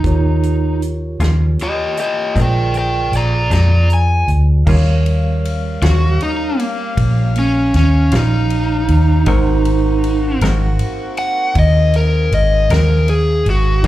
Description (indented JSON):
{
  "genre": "slow blues",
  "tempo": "52 BPM (dotted quarters)",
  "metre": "12/8",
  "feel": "straight",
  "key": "Eb mixolydian",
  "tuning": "A4 = 439 Hz",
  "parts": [
    { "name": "overdriven slide guitar", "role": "melody", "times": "0.0-13.8 s", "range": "Bb3 to Bb5", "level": "-18 LUFS", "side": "equal", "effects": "slapback echo" },
    { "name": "tine electric piano", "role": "accompaniment", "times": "0.0-13.9 s", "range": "G3 to F5", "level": "-26 LUFS", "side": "right 5 dB", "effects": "medium stereo tremolo, slapback echo" },
    { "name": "vintage muted fingered electric bass", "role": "bass", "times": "0.0-13.9 s", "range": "Ab1 to F2", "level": "-14 LUFS", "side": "equal", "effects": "none" },
    { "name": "natural country drum kit", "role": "drums", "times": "0.0-13.9 s", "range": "crash cymbal, hi-hat, kick drum, ride cymbal, snare drum", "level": "-24 LUFS", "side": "equal", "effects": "none" },
    { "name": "semi-hollow electric guitar", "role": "accompaniment", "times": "1.2-13.9 s", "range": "Bb2 to Bb4", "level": "-23 LUFS", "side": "left 4 dB", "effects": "tremolo, slapback echo" },
    { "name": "warm horn section", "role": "sustained chords", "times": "4.7-13.9 s", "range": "G3 to F5", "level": "-28 LUFS", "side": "left 2 dB", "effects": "none" }
  ],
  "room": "little or no reverb",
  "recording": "live gig heard through the venue's PA, club reverb",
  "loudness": "-13 LUFS",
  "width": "side -14 dB against mid",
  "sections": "0.0-4.7 A section; 4.7-13.9 B section",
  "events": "electric slide guitar solo 4.7-13.9",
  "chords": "0.0 Eb9; 2.4 Bb9; 4.7 Eb9; 9.3 Ab9",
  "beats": "| 0.04 1.20 2.36 3.52 | 4.67 5.82 6.97 8.12 | 9.26 10.41 11.55 12.70 | 13.84"
}